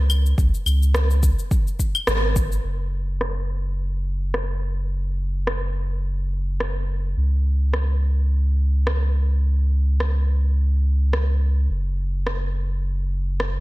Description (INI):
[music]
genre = sunset chillout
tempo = 106 BPM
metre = 4/4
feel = swing 56% on 16ths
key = unclear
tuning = A4 = 439 Hz
[part]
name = round analog bass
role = bass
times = 0.0-13.6 s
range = F#1 to C#2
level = -20 LUFS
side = equal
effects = none
[part]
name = electronic claves, cabasa and rim click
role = drums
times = 0.1-13.5 s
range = none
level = -27 LUFS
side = equal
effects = low-pass filter on perc, studio reverb, low-pass filter on snare
[part]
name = electronic kick drum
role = drums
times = 0.4-2.5 s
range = none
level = -21 LUFS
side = equal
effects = studio reverb
[sound]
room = little or no reverb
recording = none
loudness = -20 LUFS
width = side -20 dB against mid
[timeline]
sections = 0.0-2.6 A section; 2.6-13.6 B section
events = band accent 2.1; filter sweep on drum 2.6-13.6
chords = none